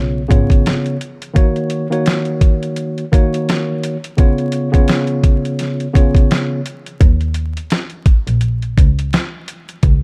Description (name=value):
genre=hip hop, boom-bap hip-hop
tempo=85 BPM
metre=4/4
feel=swing 57% on 16ths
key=Eb minor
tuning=A4 = 441 Hz
part: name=tine electric piano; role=accompaniment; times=0.0-6.6 s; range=Db3 to Db5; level=-20 LUFS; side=equal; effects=high-pass filter, low-pass filter
part: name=rich double bass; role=bass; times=0.0-0.6, 7.0-10.0 s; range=Ab1 to Eb2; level=-19 LUFS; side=equal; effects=none
part: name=boom bap sampler-style drum kit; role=drums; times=0.3-10.0 s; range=hi-hat, kick drum, snare drum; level=-16 LUFS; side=equal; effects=none
room=little or no reverb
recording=dark, warm production, vinyl crackle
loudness=-16 LUFS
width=mono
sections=0.0-10.0 A section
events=none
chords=0.0 Db7; 1.4 Ebm7; 4.2 Db7; 7.0 Eb5